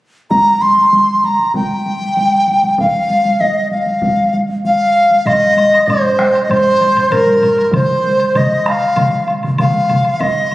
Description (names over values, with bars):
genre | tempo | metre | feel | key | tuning
japanese traditional, taiko drum ensemble | 97 BPM | 4/4 | straight | F suspended pentatonic | A4 = 440 Hz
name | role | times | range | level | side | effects
bright large dizi | melody | 0.3-10.5 s | Bb4 to C6 | -12 LUFS | equal | none
solo taiko drums | percussion | 0.3-10.5 s | none | -20 LUFS | right 1 dB | none
taiko ensemble | percussion | 0.3-10.3 s | none | -26 LUFS | equal | none
solo taiko drums | percussion | 5.3-7.6 s | none | -24 LUFS | left 1 dB | none
woodblock | percussion | 5.3-10.5 s | none | -25 LUFS | left 1 dB | none
solo taiko drums | percussion | 7.7-10.0 s | none | -17 LUFS | equal | none
room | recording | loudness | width
wet concert hall reverb, RT60 2.1 s | recorded on a phone in the room, club reverb, compression | -11 LUFS | side -16 dB against mid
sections
0.3-5.3 A section; 5.3-10.5 B section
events
none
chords
none